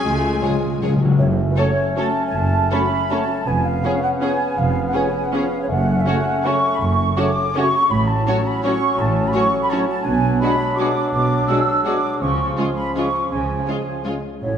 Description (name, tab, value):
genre	classical, orchestral ballroom waltz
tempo	147-179 BPM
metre	3/4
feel	rubato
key	F# minor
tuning	A4 = 440 Hz
part	warm symphonic violin section	melody	0.0-14.1 s	A4 to G#5	-34 LUFS	left 5 dB	none
part	mellow large flute ensemble	second line	0.0-14.6 s	B4 to E6	-22 LUFS	right 2 dB	none
part	warm clarinet	second line	0.0-14.6 s	C#4 to E#4	-28 LUFS	left 3 dB	none
part	warm symphonic viola section	accompaniment	0.0-14.1 s	F#3 to C#4	-30 LUFS	right 1 dB	none
part	warm trumpet section	stabs	0.0-14.2 s	G#4 to C#5	-31 LUFS	left 1 dB	none
part	warm bassoon	accompaniment	0.1-14.6 s	E#3 to B3	-27 LUFS	right 1 dB	none
part	warm symphonic cello section	bass	0.1-14.6 s	E#2 to C#3	-26 LUFS	right 2 dB	none
part	warm symphonic double bass section	bass	0.1-14.6 s	E#1 to C#2	-25 LUFS	right 2 dB	none
part	timpani	percussion	0.1-1.7, 5.7-6.2, 12.2-12.7 s	F#2 to C#3	-22 LUFS	left 2 dB	none
part	dark symphonic violin section	second line	0.4-14.1 s	E#4 to C#5	-32 LUFS	left 3 dB	none
part	mellow French horn section	sustained chords	0.4-14.2 s	G#3 to G#4	-28 LUFS	left 5 dB	none
part	warm trombone section	sustained chords	0.4-14.2 s	A2 to B3	-29 LUFS	right 3 dB	none
room	wet scoring stage reverb, RT60 1.6 s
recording	nothing above 10.3 kHz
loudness	-17 LUFS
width	side -8 dB against mid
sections	0.0-1.2 A section; 1.2-14.6 B section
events	timpani fill 0.1-1.2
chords	0.1 C#; 1.2 F#m; 3.5 C#7/E#; 5.7 F#m; 7.9 F#m/A; 10.1 G#m7b5/B; 12.2 C#